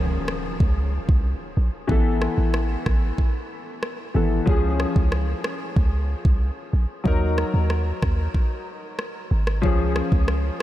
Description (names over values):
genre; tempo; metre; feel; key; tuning
dancehall; 93 BPM; 4/4; straight; Db major; A4 = 440 Hz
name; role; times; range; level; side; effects
warm grand piano; accompaniment; 0.0-10.6 s; E3 to Bb4; -27 LUFS; left 3 dB; analog chorus
warm 808-style bass; bass; 0.0-10.5 s; Ab1 to Eb2; -22 LUFS; equal; none
impact; sound effects; 0.0-1.9 s; none; -38 LUFS; right 1 dB; none
island pop drum kit; drums; 0.3-10.4 s; kick drum, rim click; -24 LUFS; equal; none
room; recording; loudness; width
light reverb, digital ambience; none; -20 LUFS; side -14 dB against mid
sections
0.0-10.6 A section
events
impact 0.0-1.9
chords
0.0 Db; 1.9 Asus2; 4.5 Db; 7.1 Ebm; 9.6 Db